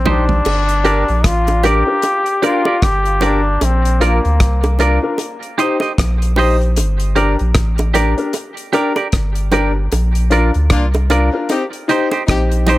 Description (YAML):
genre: roots reggae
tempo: 76 BPM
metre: 4/4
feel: swing 59% on 16ths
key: G minor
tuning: A4 = 440 Hz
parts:
  - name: brilliant trombone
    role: melody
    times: 0.0-4.8 s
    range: Bb3 to G4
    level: -18 LUFS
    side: left 2 dB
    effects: tape echo
  - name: warm sub bass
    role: bass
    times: 0.0-12.8 s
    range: G1 to D2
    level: -15 LUFS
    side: equal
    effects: none
  - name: semi-hollow electric guitar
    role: accompaniment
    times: 0.1-12.8 s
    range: Eb4 to Eb5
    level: -21 LUFS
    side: right 5 dB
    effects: tape echo
  - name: warm grand piano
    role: stabs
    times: 0.1-12.8 s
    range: D4 to C5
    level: -20 LUFS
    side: left 3 dB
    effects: none
  - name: damped 70s drum kit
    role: drums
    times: 0.1-12.8 s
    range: crash cymbal, hi-hat, kick drum, rim click, toms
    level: -19 LUFS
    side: equal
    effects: none
  - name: bongos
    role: percussion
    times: 0.1-12.8 s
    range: none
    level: -24 LUFS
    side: right 2 dB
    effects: none
  - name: warm horn section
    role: second line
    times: 10.7-12.8 s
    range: Bb3 to G4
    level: -21 LUFS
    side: left 2 dB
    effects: tape echo
room: light reverb, small room ambience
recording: none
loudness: -13 LUFS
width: side -17 dB against mid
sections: 0.5-12.8 A section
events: drum fill 0.0-0.5; band accent 9.9-12.8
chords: 0.5 Gm; 3.6 Bb; 5.2 Cm; 6.8 Gm; 9.9 Bb; 11.5 Cm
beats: | 0.46 1.25 2.04 2.83 | 3.62 4.41 5.19 5.98 | 6.77 7.56 8.35 9.14 | 9.93 10.71 11.50 12.29